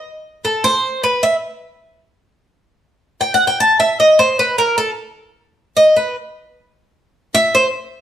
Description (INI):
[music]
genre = latin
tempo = 152 BPM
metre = 4/4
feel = straight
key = E harmonic minor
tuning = A4 = 440 Hz
[part]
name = Cuban tres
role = solo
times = 0.4-7.7 s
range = A4 to A5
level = -12 LUFS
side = equal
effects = none
[sound]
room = moderate stone room reverb, RT60 1.0 s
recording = band playing live in one room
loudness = -13 LUFS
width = side -10 dB against mid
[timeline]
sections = 0.0-8.0 A section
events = Cuban tres solo 0.0-8.0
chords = none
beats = | 0.04 0.44 0.83 1.23 | 1.62 2.02 2.41 2.81 | 3.20 3.60 3.99 4.39 | 4.78 5.17 5.57 5.96 | 6.36 6.75 7.14 7.54